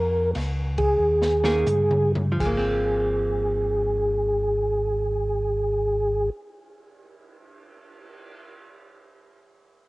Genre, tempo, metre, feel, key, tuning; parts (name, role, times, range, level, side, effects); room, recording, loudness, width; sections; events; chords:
soul jazz organ trio; 79-99 BPM; 4/4; swing 68% on 8ths; Ab major; A4 = 438 Hz
percussive tonewheel organ; melody; 0.0-6.3 s; Ab4 to Bb4; -23 LUFS; right 1 dB; slow rotary speaker, chorus vibrato, cassette tape
mellow tonewheel organ; bass; 0.0-6.3 s; Ab1 to G2; -27 LUFS; equal; slow rotary speaker
open jazz drum kit; drums; 0.3-8.3 s; crash cymbal, cymbal swell, hi-hat, kick drum, ride cymbal, snare drum, toms; -32 LUFS; equal; cassette tape
archtop guitar, miked and amplified; accompaniment; 1.4-6.5 s; Eb3 to Ab4; -31 LUFS; equal; cassette tape
light reverb; home recording on cassette, nothing above 10.6 kHz; -21 LUFS; side -21 dB against mid
0.0-2.4 A section; 2.4-8.5 B section
slowing down 0.0-2.4; drum fill 1.0-2.4
0.0 Fsus4; 1.0 Eb7sus4; 2.4 Ab69